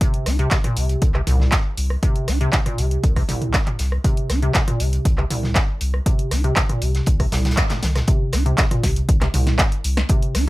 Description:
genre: acid house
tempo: 119 BPM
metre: 4/4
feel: straight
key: C minor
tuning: A4 = 440 Hz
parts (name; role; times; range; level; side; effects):
- acid bass, square; riff; 0.0-10.5 s; C2 to Eb4; -24 LUFS; equal; analog chorus, sidechain pumping
- electronic kick drum; drums; 0.0-10.2 s; none; -19 LUFS; equal; none
- punchy analog drum machine; drums; 0.0-10.4 s; handclaps, hi-hat, rim click, snare drum, toms; -24 LUFS; equal; none
- warm soul drum kit; drums; 0.0-10.5 s; hi-hat, snare drum; -32 LUFS; equal; sidechain pumping on hats, high-pass filter on hats, high-pass filter on snare, high-pass filter on room
- warm sub bass; bass; 0.3-10.5 s; C2; -21 LUFS; equal; tube saturation, sidechain pumping
room: light reverb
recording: none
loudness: -17 LUFS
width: side -19 dB against mid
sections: 0.0-8.1 A section; 8.1-10.5 B section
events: drum fill 7.6-8.1; band accent 7.6; drop 8.1-10.5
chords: 0.0 C5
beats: | 0.01 0.52 1.02 1.52 | 2.03 2.53 3.04 3.54 | 4.04 4.55 5.05 5.56 | 6.06 6.57 7.07 7.57 | 8.08 8.58 9.09 9.59 | 10.10

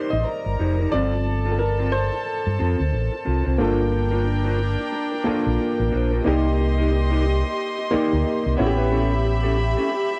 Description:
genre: soul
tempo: 90 BPM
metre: 4/4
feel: swing 58% on 16ths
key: unclear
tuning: A4 = 444 Hz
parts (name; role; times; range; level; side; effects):
- warm chamber string section; second line; 0.0-10.2 s; D4 to C6; -30 LUFS; equal; none
- warm grand piano; accompaniment; 0.0-10.2 s; F3 to Eb5; -27 LUFS; equal; none
- electric guitar through a small old amp; riff; 0.0-10.1 s; C4 to C5; -30 LUFS; equal; none
- fingered electric bass with an envelope filter; bass; 0.1-9.7 s; F1 to G2; -24 LUFS; equal; none
room: little or no reverb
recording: dry, close 1970s-style studio recording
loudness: -22 LUFS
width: mono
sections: 0.0-3.6 A section; 3.6-10.2 B section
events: grand piano solo 0.0-3.6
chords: 0.0 F9sus4; 0.9 G9sus4; 6.3 Cm7; 8.6 A7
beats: 0.27 | 0.93 1.60 2.27 2.93 | 3.60 4.26 4.93 5.59 | 6.26 6.93 7.59 8.26 | 8.92 9.59

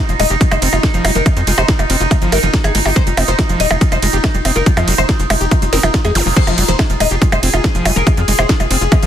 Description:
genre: psychedelic trance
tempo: 141 BPM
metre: 4/4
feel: straight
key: F minor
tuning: A4 = 440 Hz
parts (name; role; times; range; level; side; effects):
- oud; melody; 0.0-9.1 s; F4 to Eb5; -21 LUFS; left 3 dB; phaser, sidechain pumping, digital delay
- overtone-sweeping drone; sustained chords; 0.0-9.1 s; Eb4 to Ab4; -21 LUFS; equal; chorus, built-in reverb, sidechain pumping
- overdriven acid bass; riff; 0.1-9.1 s; Eb3 to G4; -22 LUFS; equal; auto-pan, sidechain pumping, dub echo
- tight sequencer bass; bass; 0.1-9.1 s; Eb1 to F2; -17 LUFS; equal; tube saturation
- techno drum kit; drums; 0.1-9.1 s; crash cymbal, hi-hat, percussion blips, ride cymbal, snare drum; -18 LUFS; right 2 dB; none
- electronic kick drum; drums; 0.4-9.0 s; none; -14 LUFS; equal; none
- zap; sound effects; 6.2-6.3 s; none; -24 LUFS; equal; none
room: little or no reverb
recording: dense, heavily limited modern master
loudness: -11 LUFS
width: side -10 dB against mid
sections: 0.0-9.1 A section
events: none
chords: 0.0 F5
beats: 0.41 0.83 | 1.26 1.69 2.11 2.54 | 2.96 3.39 3.81 4.24 | 4.66 5.09 5.51 5.94 | 6.37 6.79 7.22 7.64 | 8.07 8.49 8.92

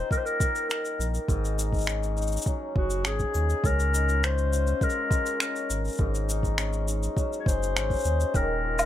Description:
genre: folktronica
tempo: 102 BPM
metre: 4/4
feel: straight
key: Ab mixolydian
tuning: A4 = 440 Hz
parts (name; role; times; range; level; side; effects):
- mellow clarinet; melody; 0.0-8.9 s; Gb4 to Db5; -30 LUFS; left 3 dB; plate reverb, ping-pong delay
- hammered dulcimer; arpeggios; 0.0-8.9 s; Ab2 to Bb4; -32 LUFS; left 2 dB; plate reverb, ping-pong delay
- warm sub bass; bass; 0.0-8.9 s; Eb1 to Eb2; -27 LUFS; equal; none
- cabasa, finger snaps and woodblock; drums; 0.1-8.9 s; none; -31 LUFS; equal; none
- electronic kick drum; drums; 0.1-8.5 s; none; -26 LUFS; equal; none
room: light reverb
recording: none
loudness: -24 LUFS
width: side -12 dB against mid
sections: 0.0-8.9 A section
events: none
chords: 0.0 Ebsus2; 1.3 Ab7sus4; 3.6 Db6; 6.0 Ab7sus4; 8.3 Ebsus2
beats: 0.11 0.70 | 1.29 1.87 2.46 3.05 | 3.64 4.23 4.82 5.40 | 5.99 6.58 7.17 7.76 | 8.35

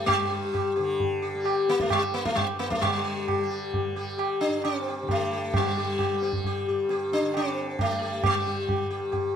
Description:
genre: indian classical, Hindustani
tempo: 133 BPM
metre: 3/4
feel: straight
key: unclear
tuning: A4 = 441 Hz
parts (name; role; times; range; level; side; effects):
- sitar; melody; 0.0-9.3 s; G3 to G4; -26 LUFS; left 2 dB; plate reverb
- tanpura; drone; 0.0-9.4 s; G2 to G3; -36 LUFS; right 1 dB; none
- tabla; percussion; 0.1-9.3 s; none; -29 LUFS; right 3 dB; none
room: wet studio reverb, RT60 0.7 s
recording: close, detailed microphones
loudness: -24 LUFS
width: side -8 dB against mid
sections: 0.0-2.8 A section; 2.8-9.4 A section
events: speeding up 0.0-9.4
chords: none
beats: | 0.08 0.54 1.00 | 1.46 1.91 2.37 | 2.82 3.28 3.73 | 4.18 4.64 5.09 | 5.54 5.99 6.44 | 6.89 7.34 7.78 | 8.23 8.68 9.12

